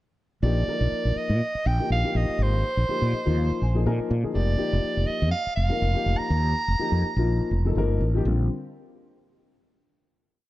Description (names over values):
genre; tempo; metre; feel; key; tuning
electric jazz fusion; 123 BPM; 4/4; swing 56% on 16ths; Bb mixolydian; A4 = 439 Hz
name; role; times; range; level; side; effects
warm soprano saxophone; melody; 0.4-7.8 s; C5 to Bb5; -28 LUFS; right 3 dB; none
dark concert grand piano; accompaniment; 0.4-8.5 s; D3 to Ab5; -29 LUFS; left 4 dB; none
mellow fretless electric bass; bass; 0.4-8.5 s; F1 to Bb2; -23 LUFS; equal; none
room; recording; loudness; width
studio ambience; dark, warm production; -22 LUFS; side -16 dB against mid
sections
0.4-8.3 groove; 8.3-10.2 final chord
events
grand piano fill 2.9-4.3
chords
0.4 Bb9sus4; 4.3 F9sus4; 8.3 Bb